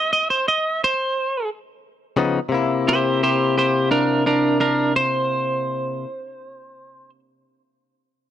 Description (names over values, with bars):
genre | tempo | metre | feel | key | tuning
blues | 87 BPM | 4/4 | straight | C mixolydian | A4 = 444 Hz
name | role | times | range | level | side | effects
clean electric guitar | melody | 0.0-7.1 s | D4 to Eb5 | -19 LUFS | right 2 dB | slapback echo
direct-recorded clean electric guitar | stabs | 2.2-6.1 s | C3 to E4 | -22 LUFS | left 4 dB | none
room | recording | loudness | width
little or no reverb | dry, close 1970s-style studio recording | -18 LUFS | side -10 dB against mid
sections
0.0-2.5 A section; 2.5-5.3 B section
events
clean electric guitar solo 0.0-2.5; stop 0.0-1.8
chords
0.0 N.C.; 1.8 Db9; 2.5 C9